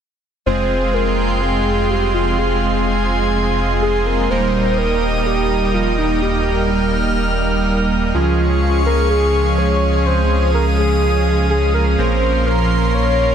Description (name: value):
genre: house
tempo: 125 BPM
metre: 4/4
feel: straight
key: F minor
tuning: A4 = 440 Hz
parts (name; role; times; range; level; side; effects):
- soft octave-layered synth lead; melody; 0.5-13.3 s; Eb4 to Db5; -20 LUFS; left 1 dB; chorus, ping-pong delay
- airy breathy pad; sustained chords; 0.5-13.3 s; Ab4 to F6; -22 LUFS; equal; chorus
- soft supersaw; stabs; 0.5-13.3 s; F3 to Bb4; -19 LUFS; right 3 dB; tape echo
- dark detuned saw bass; bass; 0.5-13.3 s; Eb1 to Db2; -19 LUFS; equal; none
room: moderate recital hall reverb, RT60 1.6 s, digital ambience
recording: dense, heavily limited modern master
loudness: -14 LUFS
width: side -8 dB against mid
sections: 0.5-13.3 A section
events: none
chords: 0.5 Fmadd9; 4.3 Eb; 8.1 Db; 12.0 Bbmadd9